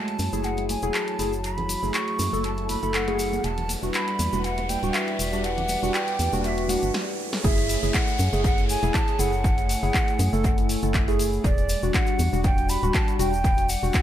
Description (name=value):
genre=deep house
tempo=120 BPM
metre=4/4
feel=swing 54% on 16ths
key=unclear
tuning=A4 = 440 Hz
part: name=breathy hollow jazz flute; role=melody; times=0.0-14.0 s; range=D5 to C#6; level=-29 LUFS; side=right 1 dB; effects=tape echo
part: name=dark analog pad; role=sustained chords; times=0.0-14.0 s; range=F#3 to G#5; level=-35 LUFS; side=left 1 dB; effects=chorus, sidechain pumping
part: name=warm analog keys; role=stabs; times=0.0-14.0 s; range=G3 to A4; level=-28 LUFS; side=equal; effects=chorus, sidechain pumping, low-pass filter, tape echo
part: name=riser and downlifter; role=sound effects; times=1.4-11.4 s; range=none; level=-37 LUFS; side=equal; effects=none
part: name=punchy analog drum machine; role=drums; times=0.1-14.0 s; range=handclaps, hi-hat, snare drum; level=-31 LUFS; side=equal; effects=dub echo
part: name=organ-like FM bass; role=bass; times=0.2-13.9 s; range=D1 to F#2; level=-27 LUFS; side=equal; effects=sidechain pumping
part: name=congas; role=percussion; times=0.2-6.8 s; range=none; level=-37 LUFS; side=right 2 dB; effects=sidechain pumping on perc, dub echo
part: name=tube shaker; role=percussion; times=0.2-14.0 s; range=none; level=-35 LUFS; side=left 6 dB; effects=none
part: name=electronic kick drum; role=drums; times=7.4-14.0 s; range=none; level=-24 LUFS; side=equal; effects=none
room=moderate spring reverb, RT60 1.2 s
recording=echo-heavy mix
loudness=-21 LUFS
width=side -11 dB against mid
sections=0.0-7.4 A section; 7.4-14.0 B section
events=build-up 0.0-7.4; filter sweep on synth keys 0.0-7.4; riser 1.4-7.4; break 6.9-7.4; drum fill 6.9-7.4; drop 7.4-14.0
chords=0.0 F#m9; 3.4 Em9; 7.2 Amaj7/E; 7.4 F#m9; 11.4 Em9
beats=0.44 0.94 | 1.44 1.94 2.44 2.94 | 3.44 3.94 4.44 4.94 | 5.44 5.94 6.44 6.94 | 7.44 7.94 8.44 8.94 | 9.44 9.94 10.44 10.94 | 11.44 11.94 12.44 12.94 | 13.44 13.94